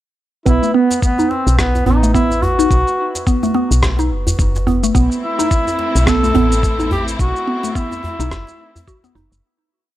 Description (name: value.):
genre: organic downtempo.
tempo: 107 BPM.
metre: 4/4.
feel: swing 59% on 16ths.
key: unclear.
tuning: A4 = 442 Hz.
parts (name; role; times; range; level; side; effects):
warm duduk; melody; 0.5-9.2 s; B3 to A4; -20 LUFS; left 1 dB; analog delay.
mallet-like synth pluck; arpeggios; 0.5-9.3 s; A3 to F#4; -18 LUFS; right 2 dB; chorus, phaser, analog delay.
woody FM bass; bass; 0.5-9.4 s; F#1 to B1; -17 LUFS; equal; sidechain pumping.
electronic kick drum; drums; 0.5-9.0 s; none; -18 LUFS; equal; studio reverb.
electronic shaker and rim click; drums; 0.5-9.4 s; none; -24 LUFS; equal; studio reverb.
djembe; percussion; 0.5-9.3 s; none; -24 LUFS; equal; none.
quartz singing bowl; texture; 0.5-9.4 s; B4; -29 LUFS; right 4 dB; none.
rich studio string section; sustained chords; 5.0-9.4 s; A3 to E4; -26 LUFS; left 1 dB; sidechain pumping.
room: small room ambience.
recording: dry, gritty hardware recording.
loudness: -13 LUFS.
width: side -14 dB against mid.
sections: 0.5-9.4 groove.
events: filter sweep on synth pluck 0.5-9.4; fade-out 6.4-9.4.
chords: 0.5 B5; 4.9 Am.